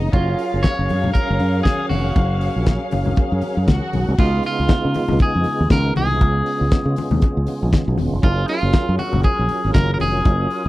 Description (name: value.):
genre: disco.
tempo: 119 BPM.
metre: 4/4.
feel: swing 56% on 16ths.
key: F# major.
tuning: A4 = 441 Hz.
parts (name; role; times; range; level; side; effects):
dark studio string section; second line; 0.0-4.2 s; C#4 to F#5; -27 LUFS; left 2 dB; none.
percussive tonewheel organ; sustained chords; 0.0-10.7 s; C#3 to A#4; -26 LUFS; right 2 dB; overdrive, chorus vibrato, slow rotary speaker.
fingered electric bass; bass; 0.0-10.7 s; E1 to C#3; -19 LUFS; equal; none.
electric guitar at the edge of break-up; melody; 0.1-10.7 s; E#4 to C#5; -23 LUFS; right 1 dB; none.
damped 70s drum kit; drums; 0.1-10.6 s; crash cymbal, hi-hat, kick drum, snare drum; -16 LUFS; equal; none.
congas; percussion; 0.1-10.4 s; none; -27 LUFS; left 4 dB; none.
room: little or no reverb.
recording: dry, close 1970s-style studio recording.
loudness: -16 LUFS.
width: side -17 dB against mid.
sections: 0.0-4.2 A section; 4.2-10.7 B section.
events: none.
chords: 0.1 F#maj7; 4.2 C#7; 8.2 F#maj7.